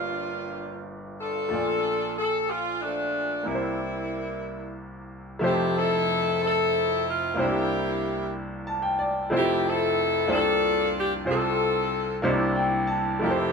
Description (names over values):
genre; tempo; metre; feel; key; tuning
gospel; 62 BPM (dotted quarters); 6/8; straight; F major; A4 = 439 Hz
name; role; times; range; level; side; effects
clear saxophone section; melody; 0.0-13.5 s; F3 to A4; -25 LUFS; left 1 dB; none
bright concert grand piano; accompaniment; 0.0-13.5 s; F1 to A5; -27 LUFS; equal; none
room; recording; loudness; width
wet studio reverb, RT60 0.6 s; band playing live in one room; -23 LUFS; side -5 dB against mid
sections
0.0-5.4 A section; 5.4-13.5 B section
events
grand piano fill 8.3-9.3, 12.2-13.2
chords
0.0 Gm7; 1.5 Bbmaj7; 3.5 C7; 5.4 Fmaj9; 7.4 C9; 9.3 Fmaj7; 10.3 C9sus4; 11.3 F/C; 12.2 C9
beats
0.53 | 1.51 2.49 | 3.47 4.45 | 5.42 6.40 | 7.37 8.35 | 9.32 10.30 | 11.27 12.24 | 13.22